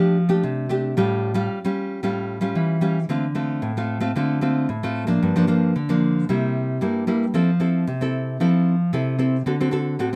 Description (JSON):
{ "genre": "samba", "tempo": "113 BPM", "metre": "4/4", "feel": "straight", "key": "D minor", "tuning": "A4 = 440 Hz", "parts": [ { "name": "nylon-string guitar", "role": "solo", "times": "0.0-10.2 s", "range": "G2 to A4", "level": "-22 LUFS", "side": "equal", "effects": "none" } ], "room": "moderate studio reverb, RT60 0.6 s", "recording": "none", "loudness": "-22 LUFS", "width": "mono", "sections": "0.0-3.1 A section; 3.1-10.2 B section", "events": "none", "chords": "0.0 F69; 1.0 A7b13; 3.1 Dm7; 5.2 Gm7; 6.3 C7; 7.3 Fmaj7; 9.5 D7" }